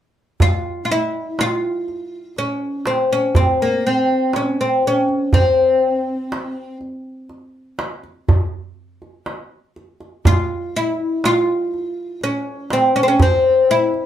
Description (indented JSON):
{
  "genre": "Arabic maqam ensemble",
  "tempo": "122 BPM (eighths)",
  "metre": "10/8",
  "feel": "straight",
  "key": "C maqam hijaz",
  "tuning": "A4 = 439 Hz",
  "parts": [
    { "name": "oud", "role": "melody", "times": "0.4-14.1 s", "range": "Bb3 to F4", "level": "-17 LUFS", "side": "left 1 dB", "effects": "none" },
    { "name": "darbuka", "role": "percussion", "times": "0.4-14.1 s", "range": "none", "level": "-17 LUFS", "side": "right 1 dB", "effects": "none" }
  ],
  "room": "wet studio reverb, RT60 0.5 s",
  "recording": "heard from further back in the room",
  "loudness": "-16 LUFS",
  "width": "side -10 dB against mid",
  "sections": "0.4-14.1 A section",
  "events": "none",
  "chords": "none",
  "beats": "| 0.41 0.90 1.39 1.88 2.38 2.87 3.36 3.85 4.34 4.84 | 5.33 5.82 6.31 6.81 7.30 7.79 8.28 8.78 9.27 9.76 | 10.25 10.75 11.24 11.73 12.22 12.71 13.21 13.70"
}